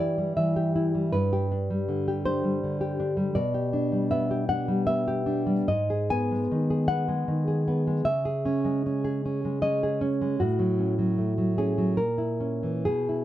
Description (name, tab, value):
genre	romantic piece for solo classical guitar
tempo	67-82 BPM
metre	3/4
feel	rubato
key	unclear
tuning	A4 = 439 Hz
part	nylon-string guitar	solo	0.0-13.2 s	G2 to G#5	-24 LUFS	equal	none
room	light reverb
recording	none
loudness	-24 LUFS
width	side -13 dB against mid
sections	0.0-13.2 A section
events	none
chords	0.0 Em/G; 1.1 G; 3.4 G/B; 5.7 G#m; 8.1 C#m; 10.4 F#m/A; 12.0 A#dim